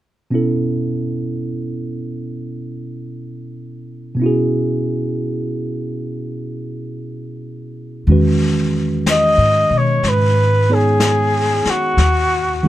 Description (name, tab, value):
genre	jazz ballad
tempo	62 BPM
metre	4/4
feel	swing 68% on 8ths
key	E major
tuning	A4 = 442 Hz
part	tine electric piano	accompaniment	0.3-12.7 s	B2 to C#5	-20 LUFS	right 2 dB	none
part	upright bass	bass	8.1-12.7 s	D#2 to B2	-17 LUFS	equal	none
part	vintage brush drum kit	drums	8.1-12.7 s	brushed snare drum, hi-hat, snare drum	-24 LUFS	left 3 dB	none
part	warm flugelhorn	melody	9.1-12.7 s	F#4 to D#5	-15 LUFS	left 1 dB	none
room	little or no reverb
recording	close, detailed microphones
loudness	-15 LUFS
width	side -14 dB against mid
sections	0.3-8.1 A section; 8.1-12.7 B section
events	none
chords	0.3 B7sus4; 4.2 E69/B; 8.1 Emaj9; 12.0 B/D# (rootless)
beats	| 0.30 1.28 2.25 3.21 | 4.18 5.15 6.12 7.10 | 8.08 9.05 10.03 11.00 | 11.98